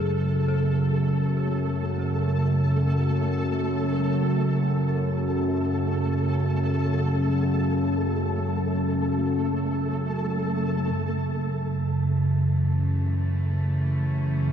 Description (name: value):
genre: dark ambient drone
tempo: free time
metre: none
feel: none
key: F# minor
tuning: A4 = 439 Hz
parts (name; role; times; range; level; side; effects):
- dark detuned synth bell; arpeggios; 0.0-11.0 s; C#4 to A4; -36 LUFS; left 3 dB; chorus, ping-pong delay, shimmer reverb
- analog drone; drone; 0.0-14.5 s; F#2 to C#3; -23 LUFS; equal; chorus
- flickering grainy texture; texture; 0.0-10.9 s; A3 to A4; -32 LUFS; right 1 dB; built-in reverb, shimmer reverb
- warm studio cello section; sustained chords; 10.9-14.5 s; F#2 to C#4; -35 LUFS; equal; none
room: wet cathedral reverb, RT60 6.7 s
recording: none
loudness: -22 LUFS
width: side -8 dB against mid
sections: 0.0-10.9 A section; 10.9-14.5 B section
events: fade-in on synth texture 0.0-10.9; fade-in on cello section 10.9-14.5; filter sweep on synth drone 10.9-14.5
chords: 0.0 F#m